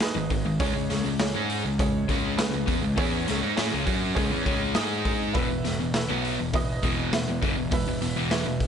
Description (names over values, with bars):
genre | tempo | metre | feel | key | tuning
classic rock | 101 BPM | 4/4 | straight | unclear | A4 = 441 Hz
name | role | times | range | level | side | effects
clear upright piano | accompaniment | 0.0-8.7 s | C#4 to E5 | -33 LUFS | right 7 dB | none
raw garage drum kit | drums | 0.0-8.7 s | hi-hat, kick drum, snare drum | -28 LUFS | equal | none
overdriven electric guitar | riff | 0.1-8.6 s | E2 to G#4 | -30 LUFS | left 13 dB | none
sludgy distorted guitar | riff | 0.2-8.6 s | E2 to G#4 | -30 LUFS | right 13 dB | overdrive
fuzz picked electric bass | bass | 0.2-8.6 s | E1 to A2 | -31 LUFS | equal | overdrive
room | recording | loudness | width
small room ambience | nothing above 10.8 kHz | -23 LUFS | side -8 dB against mid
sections
0.0-8.7 A section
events
none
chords
0.0 G#m; 0.6 C#5; 4.8 G#5; 5.3 E5